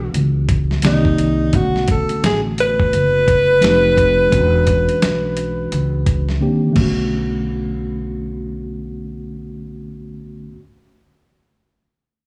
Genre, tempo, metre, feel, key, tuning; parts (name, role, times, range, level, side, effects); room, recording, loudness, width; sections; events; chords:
hip hop, jazz-hop; 86 BPM; 4/4; swing 61% on 16ths; B dorian; A4 = 440 Hz
breathy alto saxophone; melody; 0.0-6.4 s; Eb4 to B4; -19 LUFS; equal
mellow tine electric piano; accompaniment; 0.0-10.6 s; C#3 to D5; -24 LUFS; equal
upright bass; bass; 0.0-10.5 s; E1 to C#2; -24 LUFS; equal
dusty soul sampler-style drum kit; drums; 0.1-7.0 s; crash cymbal, hi-hat, kick drum, snare drum; -22 LUFS; equal
little or no reverb; small room ambience; -17 LUFS; mono
0.0-7.1 A section; 7.1-9.9 B section
silent gap 6.4-7.1
0.0 E13; 0.8 Cm9; 1.5 Bm9; 3.6 F9; 4.3 E13; 6.4 Cm9; 6.8 Bm9